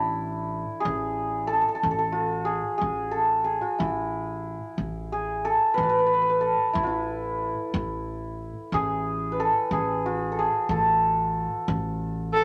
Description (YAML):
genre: persian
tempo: 61 BPM (dotted quarters)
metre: 6/8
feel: straight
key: A avaz esfahan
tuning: A4 = 441 Hz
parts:
  - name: santur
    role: melody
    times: 0.0-12.4 s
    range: D4 to B4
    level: -27 LUFS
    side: equal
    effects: none
  - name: upright bass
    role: bass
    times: 0.0-12.4 s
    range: A1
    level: -34 LUFS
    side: equal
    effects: none
  - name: bright kamancheh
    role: second line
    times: 12.3-12.4 s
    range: A4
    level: -21 LUFS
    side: equal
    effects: none
room: moderate studio reverb, RT60 0.6 s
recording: none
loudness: -26 LUFS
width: mono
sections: 0.0-12.4 A section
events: none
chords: none